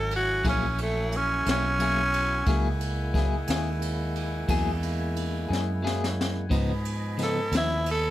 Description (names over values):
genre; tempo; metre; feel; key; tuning
slow blues; 59 BPM (dotted quarters); 12/8; straight; F# mixolydian; A4 = 440 Hz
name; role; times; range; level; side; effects
growling tenor saxophone; melody; 0.0-8.1 s; A3 to A4; -26 LUFS; right 1 dB; none
mellow brass ensemble; sustained chords; 0.0-8.1 s; D#5 to B5; -39 LUFS; equal; none
tonewheel organ; sustained chords; 0.0-8.1 s; E#3 to D#5; -37 LUFS; equal; slow rotary speaker, overdrive, chorus vibrato
fingered electric bass; bass; 0.0-8.1 s; G#1 to G#2; -29 LUFS; equal; none
jazz brush drum kit; drums; 0.1-8.0 s; kick drum, ride cymbal, snare drum; -31 LUFS; equal; none
clean electric guitar; accompaniment; 0.4-7.7 s; C#3 to G#4; -30 LUFS; left 4 dB; tremolo
room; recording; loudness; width
light reverb; none; -24 LUFS; side -14 dB against mid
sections
0.0-8.1 A section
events
tenor saxophone solo 0.0-8.1; drum fill 5.5-6.5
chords
0.0 F#9; 6.5 C#9